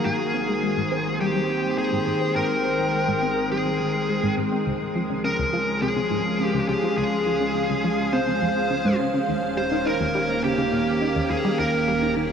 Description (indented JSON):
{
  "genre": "ambient, sequencer-driven space music",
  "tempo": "104 BPM",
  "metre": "4/4",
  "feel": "straight",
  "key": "unclear",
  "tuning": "A4 = 440 Hz",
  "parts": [
    { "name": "smooth overdriven lead guitar", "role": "melody", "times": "0.0-12.1 s", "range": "G4 to C5", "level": "-25 LUFS", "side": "equal", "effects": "shimmer reverb, tape echo" },
    { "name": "evolving wavetable pad", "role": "sustained chords", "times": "0.0-12.3 s", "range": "Eb3 to G5", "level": "-25 LUFS", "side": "equal", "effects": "chorus, built-in reverb, shimmer reverb" },
    { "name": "tight sequenced synth", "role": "riff", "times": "0.1-12.2 s", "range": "Db2 to C4", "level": "-28 LUFS", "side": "equal", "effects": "chorus, phaser, tape echo" }
  ],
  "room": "wet huge ambient reverb, RT60 7.8 s",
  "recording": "none",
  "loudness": "-21 LUFS",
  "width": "side -7 dB against mid",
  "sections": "0.1-12.3 A section",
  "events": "none",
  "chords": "0.1 Abmaj7; 4.7 Db; 9.3 Eb7",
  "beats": "| 0.05 0.63 1.21 1.78 | 2.36 2.94 3.51 4.09 | 4.67 5.25 5.82 6.40 | 6.98 7.55 8.13 8.71 | 9.28 9.86 10.44 11.01 | 11.59 12.17"
}